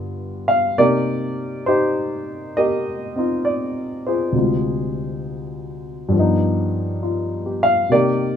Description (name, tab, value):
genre	solo jazz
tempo	67 BPM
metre	4/4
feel	swing 67% on 8ths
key	C minor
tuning	A4 = 436 Hz
part	dark grand piano	solo	0.0-8.4 s	D2 to F5	-18 LUFS	left 1 dB	none
room	moderate studio ambience, RT60 0.5 s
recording	minimal, uncompressed stereo recording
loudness	-18 LUFS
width	side -8 dB against mid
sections	0.0-7.9 A section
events	none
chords	0.0 G7; 0.8 Cm9; 4.3 Dm7b5; 6.1 G7b13